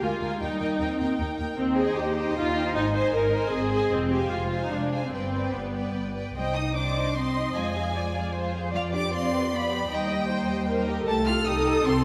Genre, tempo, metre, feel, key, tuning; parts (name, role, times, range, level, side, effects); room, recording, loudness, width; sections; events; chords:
quick classical-period movement for string orchestra; 153 BPM; 3/4; straight; C minor; A4 = 439 Hz
rich studio violin section; melody; 0.0-12.0 s; F5 to F6; -36 LUFS; equal
rich studio violin section; second line; 0.0-11.9 s; C4 to G5; -36 LUFS; equal
rich studio viola section; accompaniment; 0.0-12.0 s; B3 to Eb5; -30 LUFS; equal
clear studio double bass section; bass; 0.0-12.0 s; F1 to F2; -34 LUFS; equal
warm studio cello section; bass; 0.0-12.0 s; F3 to F4; -33 LUFS; equal
wet scoring stage reverb, RT60 2.0 s; -26 LUFS; mono
0.0-6.4 A section; 6.4-12.0 B section
0.4 Eb; 1.6 Cm/Eb; 2.8 Ab; 3.9 Fm; 5.1 G; 6.4 Cm; 7.5 Fm; 8.7 G7/F; 9.9 Cm/Eb; 11.1 Am7b5/C